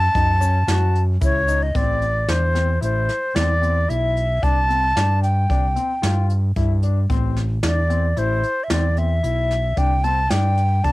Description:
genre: progressive instrumental, band music in an uneven meter.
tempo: 112 BPM.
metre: 5/4.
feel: straight.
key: A minor.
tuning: A4 = 439 Hz.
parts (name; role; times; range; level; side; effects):
bright baroque flute; melody; 0.0-10.9 s; C5 to A5; -21 LUFS; equal; cassette tape.
clean electric guitar; second line; 0.0-1.2 s; C#4; -43 LUFS; right 9 dB; none.
overdriven fingered electric bass; bass; 0.0-10.9 s; A1 to G2; -20 LUFS; equal; none.
warm concert grand piano; arpeggios; 0.1-10.9 s; C4 to F#4; -29 LUFS; left 8 dB; cassette tape.
jazz brush drum kit; drums; 0.1-10.9 s; hi-hat, kick drum, snare drum; -24 LUFS; equal; cassette tape.
tube shaker; percussion; 0.4-1.6 s; none; -39 LUFS; left 11 dB; none.
room: little or no reverb.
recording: home recording on cassette.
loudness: -17 LUFS.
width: side -19 dB against mid.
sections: 0.0-1.8 A section; 1.8-10.9 B section.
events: none.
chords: 0.0 F#m; 1.8 Am; 4.4 Csus2; 7.1 Am; 9.8 Csus2.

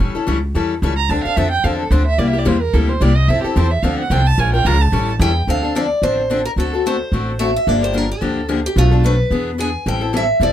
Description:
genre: acoustic string swing (jazz manouche).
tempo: 219 BPM.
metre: 4/4.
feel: swing 56% on 8ths.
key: D minor from 5.5 s.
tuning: A4 = 441 Hz.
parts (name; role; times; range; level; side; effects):
picked steel-string acoustic guitar; accompaniment; 0.0-10.5 s; B2 to Bb4; -20 LUFS; left 4 dB; none.
upright bass; bass; 0.0-10.5 s; E1 to F2; -17 LUFS; equal; none.
dark violin; second line; 1.0-5.1 s; G4 to Bb5; -20 LUFS; right 6 dB; none.
picked steel-string acoustic guitar; melody; 5.2-10.5 s; F4 to G#5; -20 LUFS; right 1 dB; none.
room: little or no reverb.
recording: close, detailed microphones.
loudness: -14 LUFS.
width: side -11 dB against mid.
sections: 0.0-5.5 A section; 5.5-10.5 B section.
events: violin solo 0.0-5.5.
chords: 0.0 A7; 1.1 Dm7; 2.2 C7; 3.3 Fmaj7; 3.8 Dm7; 4.4 Bbm7; 4.9 A7; 5.5 Dm7; 6.6 D7; 7.7 Gm7; 8.8 Bm7b5; 9.3 E7; 9.9 Am7.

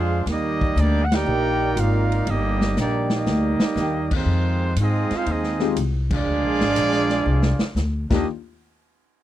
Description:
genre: jazz, big band swing.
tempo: 120 BPM.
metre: 4/4.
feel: swing 69% on 8ths.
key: Eb major.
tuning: A4 = 440 Hz.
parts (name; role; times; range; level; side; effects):
warm trumpet section; melody; 0.0-8.3 s; Ab3 to G5; -26 LUFS; equal; none.
warm trombone section; second line; 0.0-8.3 s; Eb3 to G4; -25 LUFS; right 5 dB; none.
muted trombone section; sustained chords; 0.0-4.0 s; Eb3 to D5; -29 LUFS; left 2 dB; none.
upright bass; bass; 0.0-8.2 s; G1 to Ab2; -22 LUFS; left 1 dB; none.
vintage drum kit; drums; 0.3-8.2 s; crash cymbal, hi-hat, kick drum, ride cymbal, snare drum; -25 LUFS; equal; none.
warm concert grand piano; accompaniment; 5.6-8.2 s; Ab3 to G4; -24 LUFS; left 11 dB; none.
room: little or no reverb.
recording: dry, close 1970s-style studio recording.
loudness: -19 LUFS.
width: side -13 dB against mid.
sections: 0.0-4.3 A section; 4.3-8.3 B section.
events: band accent 1.0, 6.0; drum fill 2.8-3.8, 7.3-7.8.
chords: 0.3 Ebmaj7; 4.3 Fm7; 6.3 Bb7; 8.0 Ebmaj7; 8.3 N.C..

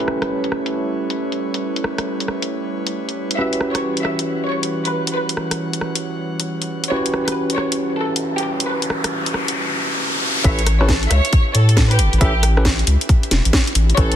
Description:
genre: UK garage, two-step garage.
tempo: 136 BPM.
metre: 4/4.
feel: swing 64% on 16ths.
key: unclear.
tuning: A4 = 440 Hz.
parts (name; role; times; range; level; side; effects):
airy breathy pad; sustained chords; 0.0-14.2 s; E3 to F#5; -29 LUFS; right 2 dB; chorus, sidechain pumping.
bright tine electric piano; stabs; 0.0-14.1 s; C#4 to E5; -23 LUFS; right 1 dB; low-pass filter, tape echo.
garage drum kit; drums; 0.0-14.2 s; hi-hat, rim click, snare drum; -22 LUFS; left 1 dB; low-pass filter on hats, small room ambience, soft clipping on snare, low-pass filter on snare.
clear symphonic violin section; melody; 3.4-14.2 s; G4 to E5; -24 LUFS; equal; ping-pong delay.
riser; sound effects; 7.8-10.4 s; none; -25 LUFS; left 1 dB; none.
saturated sub bass; bass; 10.4-14.2 s; E1 to A2; -15 LUFS; equal; none.
electronic kick drum; drums; 10.4-14.1 s; none; -16 LUFS; equal; small room ambience.
room: light reverb.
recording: dense, heavily limited modern master.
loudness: -17 LUFS.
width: side -10 dB against mid.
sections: 0.0-10.4 A section; 10.4-14.2 B section.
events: filter sweep on drum 0.0-10.4; filter sweep on tine electric piano 0.0-10.4; riser 7.8-10.4; drop 10.4-14.2.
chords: 0.0 A9; 3.4 Em69; 10.4 A9.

